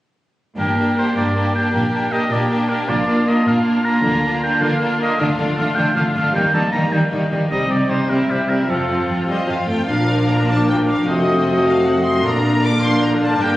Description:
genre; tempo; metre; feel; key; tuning
classical, dramatic, fast romantic movement for symphony orchestra; 103 BPM (dotted quarters); 6/8; straight; G minor, Bb major from 5.2 s; A4 = 443 Hz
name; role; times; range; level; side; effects
warm symphonic violin section; melody; 0.6-13.6 s; Eb4 to D6; -25 LUFS; left 2 dB; none
clear oboe; second line; 0.6-13.6 s; G4 to Bb5; -22 LUFS; right 1 dB; none
warm symphonic violin section; second line; 0.6-13.6 s; Bb3 to Bb4; -26 LUFS; left 1 dB; none
rich symphonic viola section; accompaniment; 0.6-13.6 s; D3 to D4; -21 LUFS; equal; none
rich symphonic cello section; bass; 0.6-13.6 s; F2 to Eb3; -22 LUFS; right 1 dB; none
rich symphonic double bass section; bass; 0.6-13.6 s; F1 to Eb2; -28 LUFS; right 1 dB; none
clear clarinet; second line; 9.9-13.6 s; Bb3 to D4; -23 LUFS; left 1 dB; none
mellow flute section; second line; 9.9-13.6 s; D6 to G6; -26 LUFS; left 2 dB; none
mellow French horn section; sustained chords; 9.9-13.6 s; A3 to Gb4; -19 LUFS; left 1 dB; none
room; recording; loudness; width
moderate concert hall reverb, RT60 2.1 s; recorded on a phone in the room, studio reverb; -15 LUFS; side -16 dB against mid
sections
0.6-9.9 A section; 9.9-13.6 B section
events
none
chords
0.6 Gm; 1.7 Gm/Bb; 4.0 Bb/D; 5.2 Dm; 6.3 Eb; 7.5 Cm; 8.7 F; 9.9 Bb; 11.1 F7b9; 12.2 Bb

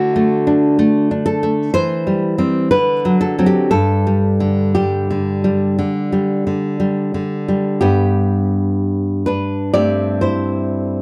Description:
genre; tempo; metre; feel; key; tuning
romantic piece for solo classical guitar; 57-66 BPM; 4/4; rubato; G major; A4 = 439 Hz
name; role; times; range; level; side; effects
nylon-string guitar; solo; 0.0-11.0 s; G2 to D5; -17 LUFS; equal; none
room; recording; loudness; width
little or no reverb; dry, close 1970s-style studio recording; -17 LUFS; mono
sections
0.0-7.8 A section; 7.8-11.0 B section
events
none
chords
0.0 D; 1.7 C/E; 2.7 D7; 3.7 G5; 7.8 G; 9.8 Am7/G

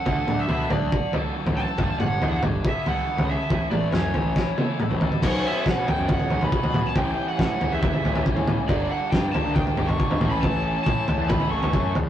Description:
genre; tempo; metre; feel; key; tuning
indie rock; 139 BPM; 4/4; straight; unclear; A4 = 439 Hz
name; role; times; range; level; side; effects
lead guitar through a small cranked amp; melody; 0.0-11.9 s; C#5 to C#6; -28 LUFS; right 2 dB; overdrive
crunchy overdriven guitar; riff; 0.0-12.0 s; G2 to E4; -32 LUFS; right 4 dB; none
raw garage guitar; riff; 0.0-12.0 s; G2 to A4; -31 LUFS; left 3 dB; overdrive
fuzz picked electric bass; bass; 0.1-12.1 s; G1 to B2; -28 LUFS; left 1 dB; overdrive
cloth-damped thuddy drum kit; drums; 0.1-12.1 s; crash cymbal, kick drum, snare drum, toms; -23 LUFS; equal; none
clear brass ensemble; sustained chords; 8.7-12.1 s; E4 to A5; -37 LUFS; left 5 dB; none
room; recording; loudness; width
moderate studio reverb, RT60 0.6 s; rough rehearsal-room recording, warm saturation; -21 LUFS; side -11 dB against mid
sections
0.0-5.2 A section; 5.2-12.1 B section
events
drum fill 4.4-5.2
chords
0.0 D; 1.8 Gadd9; 3.5 A; 5.2 Bsus2; 7.0 A7; 8.7 Gmadd9; 10.2 Aadd9

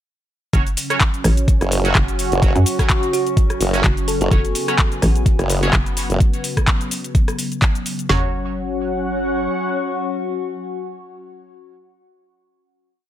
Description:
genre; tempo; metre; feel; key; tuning
bass house; 127 BPM; 4/4; swing 56% on 16ths; unclear; A4 = 439 Hz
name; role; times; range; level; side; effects
sweeping resonant pad; sustained chords; 0.5-11.8 s; C#3 to F#5; -26 LUFS; equal; chorus, sidechain pumping
band-passed chord stab; stabs; 0.5-11.8 s; F#3 to C#5; -26 LUFS; right 3 dB; wide subtle chorus, sidechain pumping, tape echo
hollow knocking FM bass; bass; 0.5-9.5 s; F#1 to F#2; -20 LUFS; equal; overdrive, sidechain pumping
garage drum kit; drums; 0.5-8.2 s; kick drum, snare drum, toms; -17 LUFS; equal; none
garage drum kit; drums; 0.5-8.1 s; handclaps, hi-hat, rim click, shaker; -22 LUFS; left 1 dB; none
warbly tape-like pad; texture; 1.2-12.0 s; C#4 to C#6; -26 LUFS; left 2 dB; chorus, built-in reverb, phaser, sidechain pumping
formant-sweep wobble bass; bass; 1.6-6.2 s; F#1; -18 LUFS; equal; chorus, tube saturation, sidechain pumping
thumb-piano-like synth pluck; melody; 3.1-4.3 s; F#4 to A4; -26 LUFS; right 4 dB; chorus, tape echo
room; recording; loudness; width
little or no reverb; none; -16 LUFS; side -11 dB against mid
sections
0.5-8.1 drop; 8.1-11.9 final chord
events
drop 0.5-8.1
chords
0.5 F#5

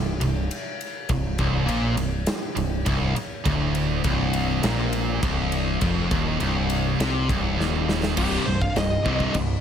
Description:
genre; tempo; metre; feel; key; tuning
heavy metal; 102 BPM; 4/4; straight; C minor; A4 = 438 Hz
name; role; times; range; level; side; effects
scooped high-gain guitar; riff; 0.0-9.6 s; C2 to C3; -27 LUFS; right 8 dB; distortion
sludgy distorted guitar; riff; 0.0-9.6 s; C2 to C3; -27 LUFS; left 9 dB; overdrive
growling picked electric bass; bass; 0.0-9.6 s; C1 to C2; -27 LUFS; equal; overdrive
big rock drum kit; drums; 0.2-9.5 s; crash cymbal, kick drum, ride cymbal, snare drum; -28 LUFS; equal; none
high-gain lead guitar; melody; 8.2-9.3 s; G4 to F5; -28 LUFS; left 1 dB; distortion
room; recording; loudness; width
light reverb, small room ambience; none; -21 LUFS; side -8 dB against mid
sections
0.0-8.2 A section; 8.2-9.6 B section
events
half time 0.0-8.2; drum fill 7.6-8.2; lead electric guitar solo 8.2-9.6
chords
0.0 Cm

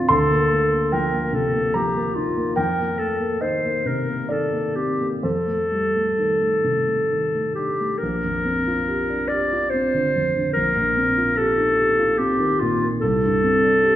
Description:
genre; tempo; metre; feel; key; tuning
classical, impressionist duo for clarinet and grand piano; 63-74 BPM; 3/4; rubato; Bb major; A4 = 440 Hz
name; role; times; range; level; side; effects
clear clarinet; melody; 0.0-14.0 s; F4 to D5; -20 LUFS; left 1 dB; none
dark concert grand piano; accompaniment; 0.0-14.0 s; Bb1 to C6; -23 LUFS; right 1 dB; none
room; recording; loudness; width
wet recital hall reverb, RT60 1.6 s; heard from further back in the room, nothing above 7.9 kHz; -19 LUFS; side -12 dB against mid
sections
0.0-8.0 A section; 8.0-14.0 B section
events
none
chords
0.1 Eb69/D; 2.6 F11; 5.2 F13; 8.0 Bb69; 10.6 Eb69/Bb; 13.0 Csus2

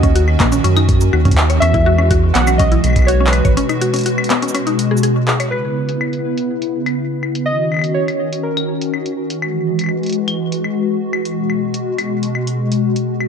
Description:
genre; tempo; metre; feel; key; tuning
IDM; 123 BPM; 4/4; straight; C# dorian; A4 = 441 Hz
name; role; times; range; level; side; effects
warbly lo-fi synth keys; melody; 0.0-9.1 s; A#4 to F#5; -22 LUFS; right 1 dB; chorus, ping-pong delay
hollow soft pad; sustained chords; 0.0-13.3 s; B2 to F#4; -18 LUFS; equal; ensemble chorus, sidechain pumping
mallet-like synth pluck; arpeggios; 0.0-5.5 s; A#3 to C#5; -21 LUFS; left 4 dB; chorus, ping-pong delay
round analog bass; bass; 0.0-3.6 s; G#1 to F#2; -14 LUFS; equal; none
booming analog drum machine; drums; 0.0-13.3 s; cabasa, claves, handclaps, hi-hat; -22 LUFS; left 2 dB; low-pass filter on hats, low-pass filter on perc, low-pass filter on snare
electronic kick drum; drums; 0.0-3.5 s; none; -16 LUFS; equal; none
room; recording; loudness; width
light reverb; dark, warm production; -14 LUFS; side -7 dB against mid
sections
0.0-5.5 A section; 5.5-13.3 B section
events
break 3.6-5.5; filter sweep on analog synth pad 5.5-13.3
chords
0.0 D#m7; 1.6 Eadd9; 3.6 G#m7; 5.5 C#m7; 7.5 D#m7; 9.4 Eadd9; 11.4 G#m7

